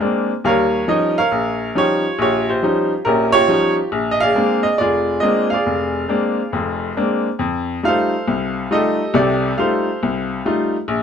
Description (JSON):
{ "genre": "solo jazz", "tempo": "138 BPM", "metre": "4/4", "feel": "swing 66% on 8ths", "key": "unclear", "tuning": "A4 = 437 Hz", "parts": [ { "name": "bright upright piano", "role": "solo", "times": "0.0-11.0 s", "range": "F1 to F5", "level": "-16 LUFS", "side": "equal", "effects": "none" } ], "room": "moderate club reverb, RT60 0.6 s", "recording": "none", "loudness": "-16 LUFS", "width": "side -7 dB against mid", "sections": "0.0-11.0 A section", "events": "none", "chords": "0.4 Eb9; 3.9 Bb9; 7.4 F9", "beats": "0.00 | 0.44 0.87 1.31 1.74 | 2.18 2.61 3.05 3.48 | 3.92 4.36 4.79 5.22 | 5.66 6.10 6.53 6.97 | 7.40 7.84 8.27 8.71 | 9.14 9.58 10.02 10.45 | 10.88" }